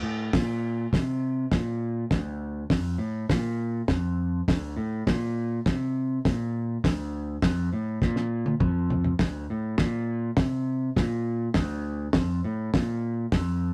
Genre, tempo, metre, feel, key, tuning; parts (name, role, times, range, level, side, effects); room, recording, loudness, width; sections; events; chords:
garage rock duo or trio; 102 BPM; 4/4; straight; D minor; A4 = 440 Hz
growling picked electric bass; bass; 0.0-13.7 s; D2 to C3; -30 LUFS; equal; overdrive
cloth-damped thuddy drum kit; drums; 0.3-13.5 s; hi-hat, kick drum, snare drum, toms; -27 LUFS; equal
moderate studio ambience, RT60 0.5 s; rough rehearsal-room recording, warm saturation; -27 LUFS; mono
0.0-13.7 A section
drum fill 8.0-9.2